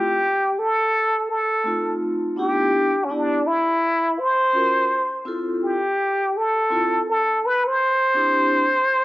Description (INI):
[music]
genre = hip hop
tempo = 83 BPM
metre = 4/4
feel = swing 59% on 16ths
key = unclear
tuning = A4 = 441 Hz
[part]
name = trumpet with plunger mute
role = melody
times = 0.0-9.0 s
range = C#4 to C5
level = -19 LUFS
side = equal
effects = none
[part]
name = vibraphone with soft mallets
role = accompaniment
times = 0.0-8.6 s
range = A3 to Bb4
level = -25 LUFS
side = left 1 dB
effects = none
[sound]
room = light reverb, small room ambience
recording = home recording on cassette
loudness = -18 LUFS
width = side -18 dB against mid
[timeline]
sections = 0.0-9.0 A section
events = none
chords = 0.0 Am7b5; 2.0 F13/A; 2.7 Cmaj9; 4.9 Fmaj7/C; 7.8 Cadd9; 8.5 C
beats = 0.58 1.30 2.02 | 2.75 3.47 4.19 4.92 | 5.64 6.36 7.08 7.81 | 8.53